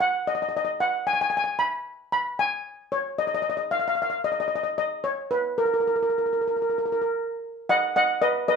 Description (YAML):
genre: calypso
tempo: 113 BPM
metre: 4/4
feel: straight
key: B major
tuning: A4 = 435 Hz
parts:
  - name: steel pan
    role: solo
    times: 0.0-8.6 s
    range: A#4 to B5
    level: -23 LUFS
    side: equal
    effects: none
room: wet studio reverb, RT60 0.7 s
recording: band playing live in one room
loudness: -23 LUFS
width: side -5 dB against mid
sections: 0.0-7.7 A section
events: none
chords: 0.0 N.C.; 7.7 B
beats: 0.26 0.79 | 1.32 1.85 2.38 2.92 | 3.45 3.98 4.51 5.04 | 5.57 6.10 6.63 7.16 | 7.69 8.22